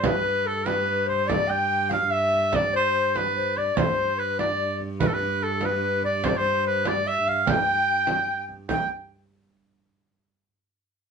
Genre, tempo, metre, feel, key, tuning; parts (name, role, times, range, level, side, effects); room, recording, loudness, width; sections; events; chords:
medieval dance; 97 BPM (dotted quarters); 6/8; straight; G mixolydian; A4 = 440 Hz
clear shawm; melody; 0.0-8.9 s; A4 to G5; -24 LUFS; right 2 dB
mellow hollow tenor recorder; second line; 0.0-8.9 s; A4 to G5; -27 LUFS; left 6 dB
rich viola da gamba; drone; 0.0-8.7 s; G2; -32 LUFS; right 2 dB
frame drum; percussion; 0.0-8.9 s; -27 LUFS; right 4 dB
wet studio ambience, RT60 0.5 s; band playing live in one room, nothing above 10.9 kHz; -21 LUFS; side -6 dB against mid
0.0-8.7 A section; 8.7-9.9 B section